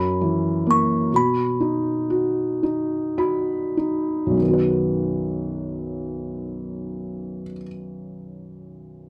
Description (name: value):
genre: children's music, lullaby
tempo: 30-45 BPM (dotted quarters)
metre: 6/8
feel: rubato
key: B major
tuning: A4 = 440 Hz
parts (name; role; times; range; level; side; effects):
- music box; melody; 0.0-3.2 s; B5 to C#6; -26 LUFS; equal; none
- felt-muted upright piano; accompaniment; 0.0-9.1 s; B1 to B5; -24 LUFS; equal; none
room: light reverb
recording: none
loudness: -23 LUFS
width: mono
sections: 0.0-4.4 A section; 4.4-8.3 B section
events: slowing down 0.0-4.4; felt piano fill 2.6-4.4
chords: 0.0 F#7; 1.1 B